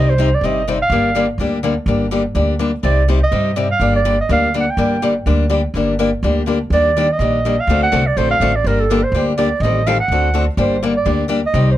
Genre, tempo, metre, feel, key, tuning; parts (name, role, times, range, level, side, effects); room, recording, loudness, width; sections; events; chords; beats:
acoustic string swing (jazz manouche); 248 BPM; 4/4; swing 57% on 8ths; G minor; A4 = 442 Hz
mellow clarinet; melody; 0.0-11.8 s; A4 to G5; -18 LUFS; right 3 dB; plate reverb
picked old ladder-braced acoustic guitar; accompaniment; 0.0-11.7 s; C3 to A4; -18 LUFS; left 3 dB
upright bass; bass; 0.0-11.8 s; G1 to G2; -18 LUFS; equal
light reverb; close, detailed microphones; -14 LUFS; side -13 dB against mid
0.0-10.6 A section; 10.6-11.8 A section
0.0 Cm; 0.9 Gm; 2.8 Cm; 3.8 Gm; 6.7 Ebmaj7; 7.7 D7#9; 8.6 Gm; 9.6 Am7b5; 10.1 D7; 10.6 Gm
0.18 0.42 0.66 | 0.90 1.15 1.39 1.63 | 1.87 2.11 2.35 2.60 | 2.84 3.08 3.32 3.57 | 3.81 4.05 4.29 4.54 | 4.78 5.02 5.26 5.50 | 5.75 5.99 6.23 6.47 | 6.71 6.96 7.20 7.44 | 7.68 7.92 8.16 8.40 | 8.65 8.89 9.13 9.37 | 9.61 9.85 10.09 10.34 | 10.58 10.82 11.06 11.30 | 11.54